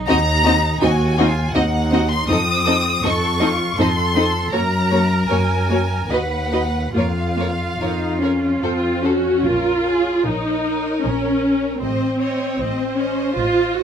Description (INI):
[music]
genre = classical, slow romantic movement for string orchestra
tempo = 69-83 BPM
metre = 3/4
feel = rubato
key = Bb minor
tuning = A4 = 440 Hz
[part]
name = clear chamber cello section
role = bass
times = 0.0-13.8 s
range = A2 to B4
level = -27 LUFS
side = right 4 dB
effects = none
[part]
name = rich chamber violin section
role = melody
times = 0.1-13.8 s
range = Db5 to Eb6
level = -23 LUFS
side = left 2 dB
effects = none
[part]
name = rich chamber violin section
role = second line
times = 0.1-13.8 s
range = Gb4 to Eb5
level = -25 LUFS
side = left 1 dB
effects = none
[part]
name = warm studio viola section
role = accompaniment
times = 0.1-13.8 s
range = Bb3 to Gb4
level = -19 LUFS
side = equal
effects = none
[part]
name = clear chamber double bass section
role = bass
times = 0.1-13.8 s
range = A1 to Gb2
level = -22 LUFS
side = equal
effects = none
[sound]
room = light reverb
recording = none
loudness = -16 LUFS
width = side -8 dB against mid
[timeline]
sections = 0.0-9.4 A section; 9.4-13.8 B section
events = none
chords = 0.1 Cdim/Eb; 2.3 F7; 4.5 Gb; 6.1 B/D#; 6.9 Bbm/F (rootless); 8.6 F5; 9.4 Bbm; 11.8 Adim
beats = | 0.08 0.81 1.54 | 2.29 3.04 3.78 | 4.53 5.30 6.10 | 6.95 7.80 8.62 | 9.45 10.25 11.04 | 11.81 12.59 13.36